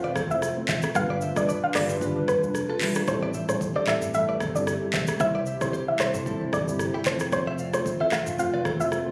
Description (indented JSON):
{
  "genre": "afrobeats",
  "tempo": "113 BPM",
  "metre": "4/4",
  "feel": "swing 55% on 16ths",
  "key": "unclear",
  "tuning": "A4 = 441 Hz",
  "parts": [
    { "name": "mellow tine electric piano", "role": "accompaniment", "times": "0.0-9.1 s", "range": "G3 to C5", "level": "-34 LUFS", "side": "equal", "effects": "lush chorus" },
    { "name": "hollow soft pad", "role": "sustained chords", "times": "0.0-9.1 s", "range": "C3 to B4", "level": "-35 LUFS", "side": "equal", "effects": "chorus" },
    { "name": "direct-recorded clean electric guitar", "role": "riff", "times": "0.0-8.8 s", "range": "E4 to F5", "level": "-36 LUFS", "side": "equal", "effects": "warbly pitch drift, delay" },
    { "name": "mellow fretless electric bass", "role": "bass", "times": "0.0-9.0 s", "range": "F1 to C2", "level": "-36 LUFS", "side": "equal", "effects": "none" },
    { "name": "congas", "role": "percussion", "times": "0.0-8.8 s", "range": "none", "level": "-41 LUFS", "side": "equal", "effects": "none" },
    { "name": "afro-pop drum kit", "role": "drums", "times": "0.2-9.1 s", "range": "handclaps, hi-hat, kick drum, rim click, shaker, toms", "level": "-32 LUFS", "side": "equal", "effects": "none" },
    { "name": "soft round pluck", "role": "melody", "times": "0.3-8.9 s", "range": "B4 to F5", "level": "-30 LUFS", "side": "equal", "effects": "chorus, delay" }
  ],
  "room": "light reverb, digital ambience",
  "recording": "recorded on a phone in the room, club reverb, compression",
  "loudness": "-26 LUFS",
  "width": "mono",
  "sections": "0.0-9.1 A section",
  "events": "none",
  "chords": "0.0 F; 1.0 G7; 3.1 Am7; 7.1 F"
}